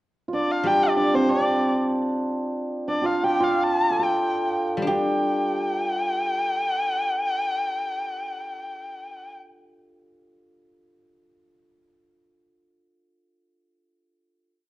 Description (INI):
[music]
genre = chinese traditional, Chinese chamber ensemble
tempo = 64-96 BPM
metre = 2/4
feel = rubato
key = G shang mode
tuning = A4 = 442 Hz
[part]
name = dark erhu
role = melody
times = 0.3-9.3 s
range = C5 to A5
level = -25 LUFS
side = left 1 dB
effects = none
[part]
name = hammered dulcimer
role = second line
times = 0.3-9.8 s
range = C4 to A4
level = -24 LUFS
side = right 2 dB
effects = none
[part]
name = guzheng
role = accompaniment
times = 0.6-2.5, 4.8-10.8 s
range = G3 to G4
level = -28 LUFS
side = left 1 dB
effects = none
[sound]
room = moderate recital hall reverb, RT60 1.3 s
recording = worn, warbling old tape, cassette tape, warbly pitch drift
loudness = -21 LUFS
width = side -17 dB against mid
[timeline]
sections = 0.0-4.9 A section; 4.9-8.6 final chord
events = slowing down 1.9-4.9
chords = none